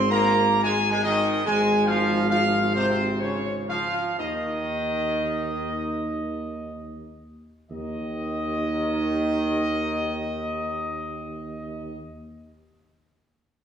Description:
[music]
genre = classical, ceremonial fanfare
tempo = 45-76 BPM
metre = 3/4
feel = straight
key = unclear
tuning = A4 = 440 Hz
[part]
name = dark trumpet section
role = melody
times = 0.0-12.0 s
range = C5 to Bb5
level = -26 LUFS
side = equal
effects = none
[part]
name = mellow French horn section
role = sustained chords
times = 0.0-12.0 s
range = C4 to Bb4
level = -32 LUFS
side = left 2 dB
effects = none
[part]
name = warm trombone section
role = sustained chords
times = 0.0-12.0 s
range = C3 to Bb3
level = -30 LUFS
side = right 2 dB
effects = none
[part]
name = dark tuba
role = bass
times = 0.0-12.0 s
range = Ab1 to Eb2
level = -28 LUFS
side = right 1 dB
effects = none
[sound]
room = wet recital hall reverb, RT60 1.6 s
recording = recorded in a church or concert hall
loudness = -22 LUFS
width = side -8 dB against mid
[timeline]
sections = 0.0-7.7 A section; 7.7-11.7 B section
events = slowing down 0.2-7.7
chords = 0.0 Abadd9; 4.2 N.C.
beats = 0.65 | 1.46 2.31 3.21 | 4.19 5.25 6.41 | 7.71 9.05 10.38

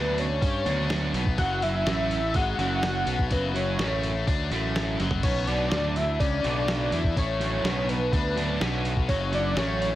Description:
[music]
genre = indie rock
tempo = 125 BPM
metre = 4/4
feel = straight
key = B minor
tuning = A4 = 440 Hz
[part]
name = fat analog lead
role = melody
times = 0.0-10.0 s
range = B4 to F#5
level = -29 LUFS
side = equal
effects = chorus, slapback echo
[part]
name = biting overdriven guitar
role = riff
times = 0.0-10.0 s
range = F#2 to G4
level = -31 LUFS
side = left 6 dB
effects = none
[part]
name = thick fuzz guitar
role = riff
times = 0.0-9.9 s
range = F#3 to F#4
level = -32 LUFS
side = right 7 dB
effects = distortion, lush chorus, slapback echo
[part]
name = fuzz fingered electric bass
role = bass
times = 0.0-10.0 s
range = F#1 to G2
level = -29 LUFS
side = equal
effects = overdrive
[part]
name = lo-fi sampler-style drum kit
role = drums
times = 0.2-9.9 s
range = crash cymbal, hi-hat, kick drum, snare drum, toms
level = -29 LUFS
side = equal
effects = none
[sound]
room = little or no reverb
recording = none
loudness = -23 LUFS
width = side -14 dB against mid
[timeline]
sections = 0.0-10.0 A section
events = drum fill 5.0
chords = 0.0 Bmadd9; 1.4 F#5; 5.2 Bmadd9; 9.1 F#5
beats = 0.42 0.90 | 1.38 1.86 2.35 2.83 | 3.31 3.79 4.27 4.75 | 5.24 5.72 6.20 6.68 | 7.16 7.64 8.12 8.61 | 9.09 9.57

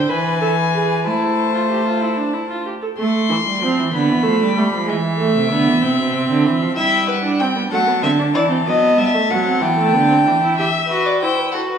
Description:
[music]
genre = classical, baroque-style fugue for string quartet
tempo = 63 BPM (dotted quarters)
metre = 6/8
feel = straight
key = A minor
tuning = A4 = 439 Hz
[part]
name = warm violin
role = melody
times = 0.0-11.6 s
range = B4 to C6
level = -23 LUFS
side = left 8 dB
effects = none
[part]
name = dark violin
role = second line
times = 0.0-2.7, 6.8-11.8 s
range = A4 to G5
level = -19 LUFS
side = left 2 dB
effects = none
[part]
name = rich viola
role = accompaniment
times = 0.0-11.8 s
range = E3 to C5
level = -20 LUFS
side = right 2 dB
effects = none
[part]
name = rich cello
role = bass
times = 0.0-10.6 s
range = B2 to A3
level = -20 LUFS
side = right 4 dB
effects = none
[sound]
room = wet recital hall reverb, RT60 1.5 s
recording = studio reverb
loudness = -15 LUFS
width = side -7 dB against mid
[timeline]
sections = 0.0-3.0 A section; 3.0-10.6 B section; 10.6-11.8 C section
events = none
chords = 0.1 E; 1.1 Am; 3.9 Bm7b5/D; 4.9 E7(no3); 5.8 Dm13/B; 6.8 Em/G; 7.7 F#m7b5; 8.7 B7/F#; 9.6 Em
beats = 0.10 | 1.05 2.01 | 2.98 3.93 | 4.88 5.83 | 6.77 7.71 | 8.66 9.62 | 10.57 11.53

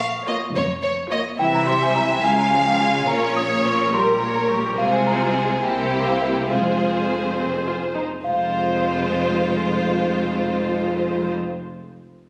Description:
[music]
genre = cinematic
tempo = 70 BPM (dotted quarters)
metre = 6/8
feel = straight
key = F minor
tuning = A4 = 440 Hz
[part]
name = celesta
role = melody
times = 0.0-11.3 s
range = E5 to Eb6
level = -26 LUFS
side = equal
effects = none
[part]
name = warm studio violin section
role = second line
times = 0.0-11.3 s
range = F4 to F5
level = -27 LUFS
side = equal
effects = none
[part]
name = rich studio cello section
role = bass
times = 0.0-11.3 s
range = F2 to Db3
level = -29 LUFS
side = equal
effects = none
[part]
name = warm studio double bass section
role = bass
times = 0.0-11.3 s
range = F1 to Db2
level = -32 LUFS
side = equal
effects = none
[part]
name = warm studio violin section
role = melody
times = 0.3-11.3 s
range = Bb4 to Ab5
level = -29 LUFS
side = equal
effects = none
[part]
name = warm studio viola section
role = accompaniment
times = 0.3-11.3 s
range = E3 to Bb4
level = -29 LUFS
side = equal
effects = none
[sound]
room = moderate scoring stage reverb, RT60 1.6 s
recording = recorded on a phone in the room, studio reverb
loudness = -21 LUFS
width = mono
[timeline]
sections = 0.0-8.2 A section; 8.2-11.7 B section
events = none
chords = 0.0 Bbm; 1.4 C; 2.2 Db; 3.1 Bbm; 3.9 Gdim/Bb; 4.8 Fm/C; 5.6 C7; 6.5 Fm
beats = 0.54 | 1.39 2.24 | 3.08 3.93 | 4.78 5.63 | 6.50 7.37 | 8.25 9.10 | 9.96 10.81

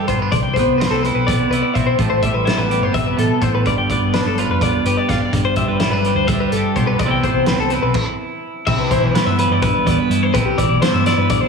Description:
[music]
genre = math rock and midwest emo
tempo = 251 BPM (eighths)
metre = 7/8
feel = straight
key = C major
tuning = A4 = 438 Hz
[part]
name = twelve-string electric guitar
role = accompaniment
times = 0.0-11.5 s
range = G2 to G4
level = -20 LUFS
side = right 7 dB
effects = spring reverb
[part]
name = twelve-string electric guitar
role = arpeggios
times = 0.0-11.5 s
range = E4 to G5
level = -19 LUFS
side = left 4 dB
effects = slapback echo
[part]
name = hollow-body short-scale fingered electric bass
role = bass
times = 0.1-11.4 s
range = F1 to G2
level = -21 LUFS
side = left 3 dB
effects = none
[part]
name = loose indie drum kit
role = drums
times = 0.1-11.4 s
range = crash cymbal, hi-hat, kick drum, snare drum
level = -22 LUFS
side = left 1 dB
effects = none
[sound]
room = wet concert hall reverb, RT60 2.1 s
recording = big arena sound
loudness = -14 LUFS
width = side -5 dB against mid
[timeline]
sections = 0.0-8.7 A section; 8.7-11.5 B section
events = stop 8.0-8.7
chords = 0.3 Cmaj7; 2.0 Am9; 3.6 G7; 5.3 Em7/G; 7.0 Cmaj7; 8.7 Cmaj9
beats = 0.07 | 0.31 0.55 0.79 1.02 1.26 1.50 1.74 | 1.98 2.22 2.46 2.69 2.93 3.17 3.41 | 3.65 3.89 4.13 4.37 4.61 4.84 5.08 | 5.32 5.56 5.80 6.04 6.28 6.52 6.76 | 7.00 7.24 7.48 7.71 7.95 8.19 8.43 | 8.67 8.91 9.15 9.39 9.62 9.86 10.10 | 10.34 10.58 10.81 11.05 11.29

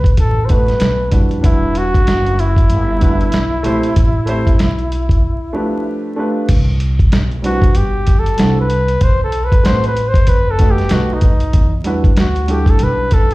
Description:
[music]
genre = hip hop, jazz-hop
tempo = 95 BPM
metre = 4/4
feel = swing 60% on 16ths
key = E minor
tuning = A4 = 440 Hz
[part]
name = warm flugelhorn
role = melody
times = 0.0-13.3 s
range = D#4 to C5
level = -19 LUFS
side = equal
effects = slapback echo, plate reverb
[part]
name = upright bass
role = bass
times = 0.0-13.3 s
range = E1 to F2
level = -17 LUFS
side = equal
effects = none
[part]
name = dusty soul sampler-style drum kit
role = drums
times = 0.0-13.3 s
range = crash cymbal, hi-hat, kick drum, snare drum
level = -13 LUFS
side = equal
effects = vintage 12-bit sampler grit
[part]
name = warm upright piano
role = accompaniment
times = 0.5-13.3 s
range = F3 to C5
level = -20 LUFS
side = right 1 dB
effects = plate reverb
[sound]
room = light reverb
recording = played on a big sound system in a bare room, large studio reverb, vinyl crackle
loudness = -12 LUFS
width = side -19 dB against mid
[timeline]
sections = 0.0-6.5 A section; 6.5-13.3 B section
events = break 5.2-6.5; flugelhorn solo 6.5-13.3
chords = 0.0 B7b9; 0.8 B7; 1.4 Em9; 4.0 Am7; 5.9 G9; 6.5 Cmaj9; 9.0 B7b9; 10.9 B7; 11.5 Em9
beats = 0.17 0.80 | 1.44 2.07 2.70 3.33 | 3.96 4.59 5.22 5.86 | 6.49 7.12 7.75 8.38 | 9.01 9.65 10.28 10.91 | 11.54 12.17 12.80

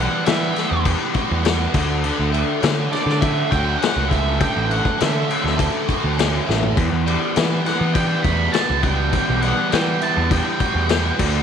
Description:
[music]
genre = psychedelic rock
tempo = 102 BPM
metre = 4/4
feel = straight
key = E dorian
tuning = A4 = 440 Hz
[part]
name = octave-fuzz lead guitar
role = melody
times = 0.0-11.2 s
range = D5 to B5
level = -24 LUFS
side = right 3 dB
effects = distortion, slapback echo
[part]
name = biting overdriven guitar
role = riff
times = 0.0-11.4 s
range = E2 to F#4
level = -23 LUFS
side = right 2 dB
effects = flanger
[part]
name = fuzz picked electric bass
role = bass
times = 0.0-11.4 s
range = A1 to E3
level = -22 LUFS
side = right 2 dB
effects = overdrive
[part]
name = vintage drum kit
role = drums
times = 0.3-11.3 s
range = crash cymbal, kick drum, snare drum, toms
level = -21 LUFS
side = left 5 dB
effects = none
[sound]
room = small room ambience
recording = 1960s-style stereo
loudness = -17 LUFS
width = side -8 dB against mid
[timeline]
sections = 0.0-11.4 A section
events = drum fill 6.5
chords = 0.0 Emadd9; 1.7 Dmaj7; 6.8 Emadd9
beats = 0.26 0.85 1.45 | 2.04 2.63 3.22 3.81 | 4.40 4.99 5.58 6.17 | 6.76 7.35 7.94 8.53 | 9.12 9.71 10.30 10.89

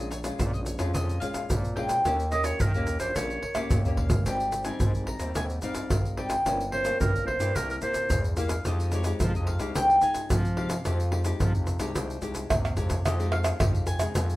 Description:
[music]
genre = samba and choro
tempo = 109 BPM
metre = 4/4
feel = straight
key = F minor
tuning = A4 = 440 Hz
[part]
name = mandolin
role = melody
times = 0.0-14.4 s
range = C5 to Bb5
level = -29 LUFS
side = equal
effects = none
[part]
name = nylon-string guitar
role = accompaniment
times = 0.0-14.4 s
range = F2 to G4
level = -34 LUFS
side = left 2 dB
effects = none
[part]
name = growling FM bass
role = bass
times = 0.0-14.4 s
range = G1 to F3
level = -30 LUFS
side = equal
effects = none
[part]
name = tube shaker, pandeiro, surdo and tamborim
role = percussion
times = 0.0-14.4 s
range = none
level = -28 LUFS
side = equal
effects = none
[part]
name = bright clarinet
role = second line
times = 2.3-8.2 s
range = Bb4 to Eb5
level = -29 LUFS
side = right 2 dB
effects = none
[sound]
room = moderate studio reverb, RT60 0.6 s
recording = band playing live in one room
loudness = -24 LUFS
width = side -17 dB against mid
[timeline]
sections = 0.0-13.1 A section; 13.1-14.4 B section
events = drum fill 3.6-4.3, 12.5-13.1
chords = 0.0 Bbm7; 2.1 Eb7; 4.3 Abmaj7; 6.5 Gm7b5; 7.6 C7; 8.7 Fm9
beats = 0.40 0.95 1.50 | 2.05 2.60 3.15 3.70 | 4.25 4.80 5.36 5.91 | 6.46 7.01 7.56 8.11 | 8.66 9.21 9.76 10.31 | 10.86 11.41 11.96 12.50 | 13.05 13.60 14.15

